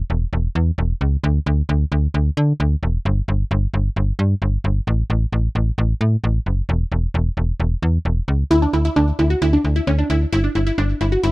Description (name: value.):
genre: synth-pop.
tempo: 132 BPM.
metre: 4/4.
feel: straight.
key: unclear.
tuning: A4 = 440 Hz.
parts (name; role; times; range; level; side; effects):
slap-like FM bass; bass; 0.0-11.3 s; E1 to D3; -17 LUFS; equal; none.
wide unison pluck; arpeggios; 8.5-11.3 s; C#4 to F#4; -18 LUFS; equal; digital delay.
room: light reverb.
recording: rough home demo mix.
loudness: -17 LUFS.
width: side -21 dB against mid.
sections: 0.0-8.5 A section; 8.5-11.3 B section.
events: none.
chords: 0.0 C#m/E; 1.2 N.C.; 8.5 Dsus2; 10.3 G5.